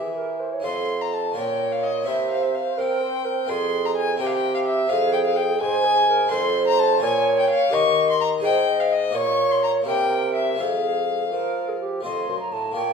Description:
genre	classical, baroque-style sonata movement with continuo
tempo	84 BPM (dotted quarters)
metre	6/8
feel	straight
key	F minor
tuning	A4 = 440 Hz
part	warm violin	melody	0.0-12.9 s	Bb4 to Db6	-24 LUFS	left 4 dB	none
part	hollow concert flute	second line	0.0-12.9 s	G4 to C6	-24 LUFS	right 3 dB	none
part	harpsichord	accompaniment	0.0-12.9 s	F2 to Eb5	-31 LUFS	equal	none
part	mellow bassoon	bass	0.0-12.9 s	F2 to C4	-26 LUFS	equal	none
room	wet stone room reverb, RT60 1.1 s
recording	heard from further back in the room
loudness	-19 LUFS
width	side -6 dB against mid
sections	0.6-12.0 A section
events	none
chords	0.0 C; 0.6 F7; 1.4 Bbm; 2.1 C7; 3.5 Fm; 4.2 C7; 4.9 Fm; 6.3 F7; 7.0 Bbm; 7.7 Eb7; 8.4 Ab; 9.1 Bbm; 9.9 C7; 10.6 Fm; 12.0 F7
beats	| 0.64 1.36 | 2.07 2.78 | 3.49 4.20 | 4.91 5.61 | 6.32 7.02 | 7.72 8.43 | 9.14 9.86 | 10.59 11.32 | 12.04 12.76

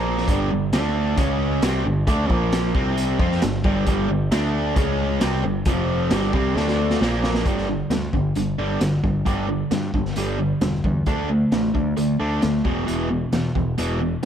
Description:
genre	classic rock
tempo	133 BPM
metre	4/4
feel	straight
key	unclear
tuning	A4 = 440 Hz
part	cranked stack guitar	riff	0.0-14.2 s	E2 to F4	-21 LUFS	equal	overdrive, spring reverb
part	growling picked electric bass	bass	0.0-14.1 s	E1 to G2	-26 LUFS	equal	overdrive
part	raw garage drum kit	drums	0.2-14.2 s	hi-hat, kick drum, snare drum	-25 LUFS	equal	none
room	little or no reverb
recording	none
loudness	-19 LUFS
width	side -9 dB against mid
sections	0.0-7.5 A section; 7.5-14.2 B section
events	drum fill 6.6-7.5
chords	0.3 G5; 0.7 D5; 1.2 C#5; 1.6 G5; 2.3 Bb5; 2.7 C5; 3.2 G5; 4.3 D5; 4.8 C#5; 5.2 G5; 5.7 F5; 6.1 G5; 6.6 D5; 7.0 Bb5; 7.5 G5; 11.1 D5; 12.7 E5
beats	| 0.27 0.72 1.17 1.62 | 2.07 2.52 2.96 3.41 | 3.86 4.31 4.76 5.21 | 5.66 6.11 6.56 7.01 | 7.46 7.91 8.36 8.81 | 9.26 9.72 10.17 10.62 | 11.07 11.52 11.97 12.43 | 12.88 13.33 13.78 14.23

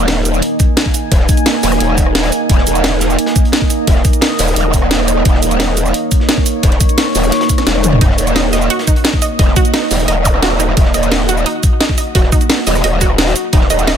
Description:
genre	dark technical drum and bass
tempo	174 BPM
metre	4/4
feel	straight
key	Eb minor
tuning	A4 = 440 Hz
part	deep dark ambient pad	sustained chords	0.0-14.0 s	Bb3 to Ab5	-17 LUFS	right 2 dB	chorus, built-in reverb, sidechain pumping
part	growl bass	bass	0.0-14.0 s	Eb1 to Fb1	-15 LUFS	equal	chorus, tube saturation
part	crunchy breakbeat drum kit	drums	0.1-14.0 s	hi-hat, snare drum	-27 LUFS	equal	none
part	drum and bass drum kit	drums	0.1-13.9 s	cabasa, hi-hat, rim click, snare drum, toms	-16 LUFS	equal	overdrive
part	electronic kick drum	drums	0.6-13.6 s	none	-12 LUFS	equal	overdrive
part	wide unison pluck	arpeggios	8.0-14.0 s	Eb4 to Eb5	-20 LUFS	right 4 dB	vintage 12-bit sampler grit, sidechain pumping, dub echo
part	zap	sound effects	10.3 s	none	-22 LUFS	left 1 dB	none
room	digital ambience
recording	none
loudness	-10 LUFS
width	side -8 dB against mid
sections	0.0-14.0 A section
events	drum fill 7.7-8.0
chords	0.0 Eb5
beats	0.08 0.43 0.77 | 1.12 1.46 1.81 2.15 | 2.50 2.84 3.19 3.53 | 3.88 4.22 4.56 4.91 | 5.25 5.60 5.94 6.29 | 6.63 6.98 7.32 7.67 | 8.01 8.36 8.70 9.05 | 9.39 9.74 10.08 10.43 | 10.77 11.12 11.46 11.81 | 12.15 12.49 12.84 13.19 | 13.53 13.88

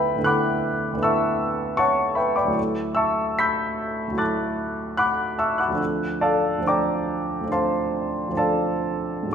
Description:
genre	classical, impressionist solo piano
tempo	60-80 BPM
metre	4/4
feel	rubato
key	D major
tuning	A4 = 440 Hz
part	clear grand piano	solo	0.0-9.3 s	D2 to B6	-21 LUFS	equal	none
room	wet recital hall reverb, RT60 1.4 s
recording	minimal, uncompressed stereo recording, faint mains hum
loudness	-21 LUFS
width	side -7 dB against mid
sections	0.0-9.3 A section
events	none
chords	0.0 D69; 5.8 Dm7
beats	0.27 1.05 1.81 | 2.57 3.41 4.21 5.00 | 5.79 6.68 7.52 8.37 | 9.34

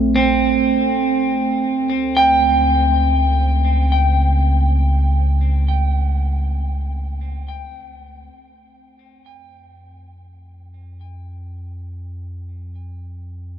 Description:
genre	ambient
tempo	free time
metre	none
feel	none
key	unclear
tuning	A4 = 443 Hz
part	deep rumbling drone	bass	0.0-13.6 s	Bb1 to F2	-19 LUFS	equal	built-in reverb
part	analog drone	drone	0.0-8.5 s	A3 to C4	-23 LUFS	right 2 dB	chorus
part	clean electric guitar	arpeggios	0.2-5.1 s	C4 to G5	-19 LUFS	right 1 dB	ping-pong delay
room	moderate huge ambient reverb, RT60 8.2 s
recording	dark, warm production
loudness	-15 LUFS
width	side -9 dB against mid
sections	0.0-8.4 A section; 8.4-13.6 B section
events	none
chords	0.0 Bbsus2; 1.3 A7#9/C#; 8.4 N.C.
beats	free time

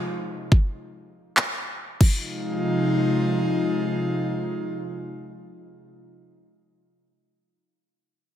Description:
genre	future bass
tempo	free time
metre	none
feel	none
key	F minor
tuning	A4 = 445 Hz
part	airy breathy pad	sustained chords	0.0-5.9 s	C3 to F4	-24 LUFS	equal	chorus, sidechain pumping
part	electronic kick drum	drums	0.5-2.1 s	none	-16 LUFS	equal	none
part	trap drum kit	drums	1.4-2.1 s	crash cymbal, handclaps	-25 LUFS	equal	none
room	moderate lush hall reverb, RT60 2.1 s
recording	heavily compressed radio sound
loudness	-22 LUFS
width	side -11 dB against mid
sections	0.0-2.2 A section; 2.2-5.6 B section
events	none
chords	0.0 Fm7; 0.5 N.C.; 2.0 Fm7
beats	free time

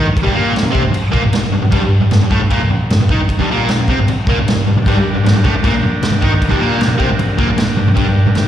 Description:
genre	garage rock duo or trio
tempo	154 BPM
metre	4/4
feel	straight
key	G minor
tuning	A4 = 440 Hz
part	fuzz guitar	riff	0.0-8.5 s	G2 to Eb4	-13 LUFS	equal	distortion, slapback echo
part	vintage drum kit	drums	0.2-8.5 s	crash cymbal, kick drum, snare drum	-17 LUFS	equal	none
part	combo organ	sustained chords	4.8-8.5 s	D4 to Bb4	-22 LUFS	equal	none
room	light reverb, small room ambience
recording	live gig heard through the venue's PA, recital hall reverb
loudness	-12 LUFS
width	side -10 dB against mid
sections	0.0-8.5 A section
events	none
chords	0.0 Gm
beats	| 0.16 0.55 0.94 1.33 | 1.72 2.12 2.51 2.90 | 3.29 3.68 4.07 4.46 | 4.85 5.25 5.63 6.03 | 6.42 6.81 7.20 7.58 | 7.97 8.36

